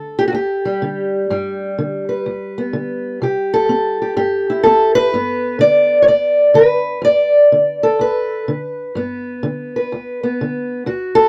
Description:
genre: acoustic country blues, solo or duo.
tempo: 125 BPM.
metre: 4/4.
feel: swing 64% on 8ths.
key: G major.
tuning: A4 = 440 Hz.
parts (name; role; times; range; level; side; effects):
fingerpicked steel-string acoustic guitar; solo; 0.0-11.3 s; D2 to D5; -16 LUFS; equal; none.
room: light reverb.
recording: dry, close 1970s-style studio recording.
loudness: -16 LUFS.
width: mono.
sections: 0.0-11.3 A section.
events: none.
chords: 0.0 G; 3.2 C; 5.1 G.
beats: 0.33 0.80 | 1.28 1.76 2.24 2.72 | 3.20 3.67 4.15 4.63 | 5.11 5.59 6.07 6.55 | 7.03 7.51 7.99 8.47 | 8.95 9.43 9.90 10.38 | 10.86.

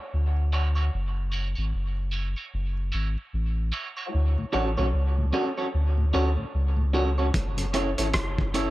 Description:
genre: dub reggae.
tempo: 75 BPM.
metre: 4/4.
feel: swing 60% on 16ths.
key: F# minor.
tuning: A4 = 440 Hz.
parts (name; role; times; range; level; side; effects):
mellow tonewheel organ; accompaniment; 0.0-7.7 s; D2 to F#4; -34 LUFS; left 2 dB; overdrive, chorus vibrato, slow rotary speaker, high-pass filter.
soft dub sub bass; bass; 0.1-8.7 s; F#1 to D2; -25 LUFS; equal; none.
electric guitar at the edge of break-up; accompaniment; 0.5-8.7 s; A3 to C#5; -30 LUFS; right 1 dB; high-pass filter, dub echo.
cloth-damped thuddy drum kit; drums; 7.3-8.7 s; hi-hat, kick drum, rim click; -28 LUFS; equal; none.
room: studio reverb.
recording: none.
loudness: -24 LUFS.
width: side -17 dB against mid.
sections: 0.0-8.7 A section.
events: part muted 4.1-7.3; break 7.3-8.7.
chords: 0.0 Dmaj7; 0.9 F#m7; 4.1 Dmaj7; 7.3 F#m7.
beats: 0.13 | 0.93 1.73 2.53 3.34 | 4.14 4.94 5.74 6.54 | 7.34 8.14.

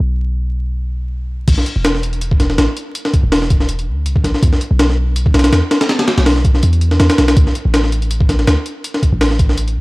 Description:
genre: drum and bass, jungle.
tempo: 163 BPM.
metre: 4/4.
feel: swing 54% on 16ths.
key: unclear.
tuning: A4 = 440 Hz.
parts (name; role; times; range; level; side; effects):
warm 808-style bass; bass; 0.0-9.8 s; E1 to F#2; -15 LUFS; equal; tube saturation.
breakbeat sampler-style drum kit; drums; 1.5-9.8 s; crash cymbal, hi-hat, kick drum, snare drum; -14 LUFS; equal; none.
room: little or no reverb.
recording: dry, gritty hardware recording, vinyl crackle, low-pass filter.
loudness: -12 LUFS.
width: side -22 dB against mid.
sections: 0.0-1.5 A section; 1.5-9.8 B section.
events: filter sweep 0.0-1.5; drop 1.5-9.8.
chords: none.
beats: | 0.01 0.37 0.74 1.11 | 1.48 1.85 2.21 2.58 | 2.95 3.32 3.69 4.05 | 4.42 4.79 5.16 5.53 | 5.89 6.26 6.63 7.00 | 7.37 7.74 8.10 8.47 | 8.84 9.21 9.58.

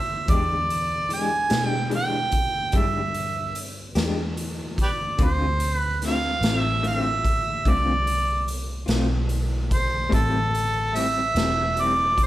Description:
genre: slow blues.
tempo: 49 BPM (dotted quarters).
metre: 12/8.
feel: straight.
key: unclear.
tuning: A4 = 440 Hz.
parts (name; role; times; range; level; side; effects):
warm harmonica; melody; 0.0-12.3 s; G4 to G#5; -24 LUFS; right 2 dB; overdrive.
vintage muted fingered electric bass; bass; 0.0-12.3 s; E1 to B2; -27 LUFS; equal; none.
electric guitar through a small old amp; accompaniment; 0.3-12.0 s; A2 to G4; -29 LUFS; left 2 dB; tremolo.
raw garage drum kit; drums; 0.3-12.3 s; hi-hat, kick drum, snare drum; -27 LUFS; equal; none.
room: moderate large studio reverb, RT60 1.2 s.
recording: band playing live in one room.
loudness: -21 LUFS.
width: side -15 dB against mid.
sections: 0.0-12.3 A section.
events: none.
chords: 0.3 E7#9; 5.2 Dm7; 10.1 Am7.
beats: | 0.28 1.51 2.74 3.97 | 5.20 6.43 7.66 8.89 | 10.12 11.35.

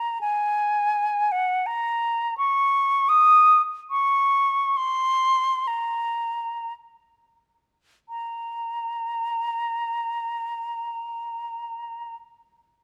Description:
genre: classical, free, expressive piece for unaccompanied flute.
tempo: free time.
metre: none.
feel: none.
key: Bb minor.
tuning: A4 = 440 Hz.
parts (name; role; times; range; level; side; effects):
silver concert flute; solo; 0.0-12.2 s; Gb5 to Eb6; -23 LUFS; equal; none.
room: moderate scoring stage reverb, RT60 1.6 s.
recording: close, detailed microphones.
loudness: -23 LUFS.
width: mono.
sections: 0.0-8.1 A section; 8.1-11.4 B section.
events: slowing down 1.3-8.1.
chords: none.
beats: free time.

